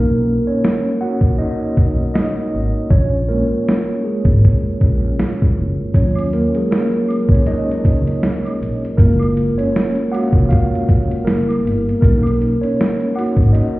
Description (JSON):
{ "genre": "lo-fi hip hop", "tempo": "79 BPM", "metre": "4/4", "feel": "swing 59% on 16ths", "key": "Eb minor", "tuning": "A4 = 440 Hz", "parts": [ { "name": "mellow tine electric piano", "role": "accompaniment", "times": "0.0-13.8 s", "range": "Gb3 to F#5", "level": "-18 LUFS", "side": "equal", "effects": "medium stereo tremolo, cassette tape, low-pass filter" }, { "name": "upright bass", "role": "bass", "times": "0.0-13.5 s", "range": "F1 to Eb2", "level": "-18 LUFS", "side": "equal", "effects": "none" }, { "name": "lo-fi sampler-style drum kit", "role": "drums", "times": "0.6-13.8 s", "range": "hi-hat, kick drum, snare drum", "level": "-15 LUFS", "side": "equal", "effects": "none" }, { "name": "egg shaker and woodblock", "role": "percussion", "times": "6.0-13.7 s", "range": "none", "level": "-36 LUFS", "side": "equal", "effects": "none" } ], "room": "light reverb", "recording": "heard muffled through a wall, stone room reverb, vinyl crackle, EQ", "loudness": "-14 LUFS", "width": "side -18 dB against mid", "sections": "0.0-13.8 A section", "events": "break 0.0-5.9; tine electric piano solo 0.0-13.8", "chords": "0.0 Bmaj9; 2.9 Bbm7; 5.9 Ebm9; 9.0 Gbmaj7; 11.3 Gb7b9; 12.0 Bmaj9" }